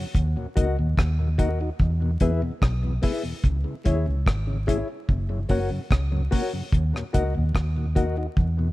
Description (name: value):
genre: roots reggae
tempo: 73 BPM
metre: 4/4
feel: straight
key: unclear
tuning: A4 = 440 Hz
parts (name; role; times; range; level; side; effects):
- mellow tonewheel organ; accompaniment; 0.0-8.7 s; D#2 to F#4; -32 LUFS; left 2 dB; slow rotary speaker, dub echo
- deep reggae drum kit; drums; 0.1-8.6 s; hi-hat, kick drum, rim click; -23 LUFS; equal; none
- vintage muted fingered electric bass; bass; 0.2-8.7 s; F#1 to E2; -24 LUFS; equal; none
- reed electric piano; stabs; 0.6-8.2 s; E4 to F#5; -32 LUFS; left 3 dB; fast tremolo
room: little or no reverb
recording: vinyl crackle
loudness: -22 LUFS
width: side -18 dB against mid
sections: 0.0-8.7 A section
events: none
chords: 0.2 D#m; 1.8 E; 3.4 C#m; 5.1 F#; 6.7 D#m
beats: 0.15 0.98 | 1.80 2.62 3.44 4.26 | 5.08 5.91 6.73 7.55 | 8.37